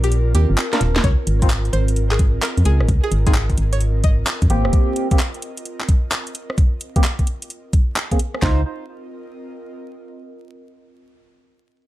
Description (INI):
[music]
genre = UK garage, two-step garage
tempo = 130 BPM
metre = 4/4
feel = swing 65% on 16ths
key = Db major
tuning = A4 = 441 Hz
[part]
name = string-like resonator pluck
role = melody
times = 0.0-4.2 s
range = G4 to Eb5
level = -28 LUFS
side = equal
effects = chorus, dub echo
[part]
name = organ-like FM bass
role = bass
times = 0.0-4.7, 8.4-8.6 s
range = Eb1 to F2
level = -17 LUFS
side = equal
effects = tube saturation
[part]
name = garage drum kit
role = drums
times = 0.0-8.4 s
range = handclaps, hi-hat, rim click, snare drum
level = -24 LUFS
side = equal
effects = studio ambience
[part]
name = airy breathy pad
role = texture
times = 0.0-10.2 s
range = C4 to Eb5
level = -31 LUFS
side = right 1 dB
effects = chorus, sidechain pumping
[part]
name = percussive organ stab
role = stabs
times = 0.7-8.6 s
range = Bb3 to C5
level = -24 LUFS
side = equal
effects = lush chorus, digital delay
[part]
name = garage drum kit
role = drums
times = 1.0-8.6 s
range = handclaps, kick drum, snare drum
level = -17 LUFS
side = equal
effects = studio ambience
[sound]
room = little or no reverb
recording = vinyl crackle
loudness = -16 LUFS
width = side -16 dB against mid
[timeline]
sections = 0.0-1.0 A section; 1.0-8.4 B section; 8.4-10.3 C section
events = kick drops out 0.1-1.0; drum fill 0.7-1.0; fade-out on analog synth pad 1.0-8.4; filter sweep on synth stab 1.0-8.4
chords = 0.0 Ebmaj9; 1.0 Dbmaj9 (rootless); 4.5 Abmaj9 (rootless); 8.4 Dbmaj9 (rootless)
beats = 0.12 0.58 | 1.04 1.50 1.96 2.43 | 2.89 3.35 3.81 4.27 | 4.73 5.20 5.66 6.12 | 6.58 7.04 7.50 7.96 | 8.43 8.89 9.35 9.81